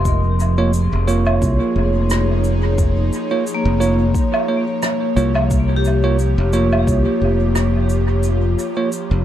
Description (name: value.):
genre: ambient dub.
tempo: 88 BPM.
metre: 4/4.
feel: swing 56% on 16ths.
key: unclear.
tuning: A4 = 439 Hz.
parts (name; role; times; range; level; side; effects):
airy breathy pad; sustained chords; 0.0-9.2 s; F3 to Db5; -24 LUFS; equal; chorus.
vibraphone with hard mallets; arpeggios; 0.0-9.2 s; Bb3 to C6; -25 LUFS; left 6 dB; dub echo.
modern bright fingered electric bass; bass; 0.0-9.2 s; F1 to C2; -17 LUFS; equal; none.
cabasa, woodblock and rim click; drums; 0.1-9.1 s; none; -27 LUFS; right 1 dB; dub echo.
electronic kick drum; drums; 0.1-7.0 s; none; -20 LUFS; equal; none.
bell-like tine electric piano; stabs; 0.6-8.9 s; Bb3 to Db5; -22 LUFS; right 3 dB; dub echo.
room: light reverb, small room reverb.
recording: none.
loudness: -15 LUFS.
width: side -11 dB against mid.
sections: 0.0-9.2 A section.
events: break 8.2-9.2.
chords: 0.1 Bbm/F.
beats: | 0.05 0.73 1.42 2.10 | 2.78 3.46 4.14 4.83 | 5.51 6.19 6.87 7.55 | 8.23 8.92.